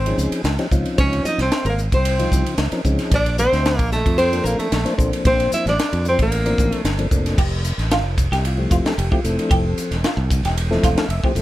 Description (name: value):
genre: electric jazz fusion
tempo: 113 BPM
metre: 4/4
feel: straight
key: F major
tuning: A4 = 441 Hz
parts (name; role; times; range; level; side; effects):
- nylon-string guitar; melody; 0.0-7.0 s; A4 to E5; -23 LUFS; left 1 dB; slapback echo
- clear tenor saxophone; second line; 0.0-7.0 s; A3 to E4; -24 LUFS; right 2 dB; none
- modern bright fingered electric bass; bass; 0.0-11.4 s; E1 to F2; -21 LUFS; equal; none
- percussive tonewheel organ; accompaniment; 0.1-11.4 s; Db3 to F5; -23 LUFS; left 2 dB; slow rotary speaker, chorus vibrato
- crisp fusion drum kit; drums; 0.1-11.4 s; crash cymbal, hi-hat, kick drum, ride cymbal, snare drum; -21 LUFS; equal; none
- clean electric guitar; stabs; 7.4-11.4 s; F4 to G4; -25 LUFS; right 2 dB; analog chorus
room: little or no reverb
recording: none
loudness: -17 LUFS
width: side -15 dB against mid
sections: 0.0-7.4 A section; 7.4-11.4 B section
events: none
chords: 0.0 Dbmaj9; 3.1 Bbmaj9; 7.4 Fmaj9